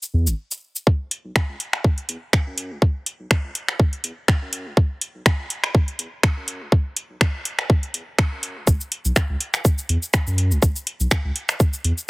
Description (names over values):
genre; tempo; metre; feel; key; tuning
minimal techno; 123 BPM; 4/4; swing 55% on 16ths; unclear; A4 = 440 Hz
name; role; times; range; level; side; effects
booming analog drum machine; drums; 0.0-12.1 s; finger snaps, hi-hat, shaker; -22 LUFS; equal; overdrive, high-pass filter on perc, high-pass filter on hats, high-pass filter on snare, high-pass filter on room
saturated sub bass; bass; 0.1-11.9 s; G#1 to F#2; -22 LUFS; equal; sidechain pumping, high-pass filter
electronic kick drum; drums; 0.9-11.7 s; none; -17 LUFS; equal; none
room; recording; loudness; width
little or no reverb; heavily compressed radio sound, multiband compression; -19 LUFS; side -24 dB against mid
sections
0.9-8.7 A section; 8.7-12.1 B section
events
build-up 0.9-8.7; drop 8.7-12.1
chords
none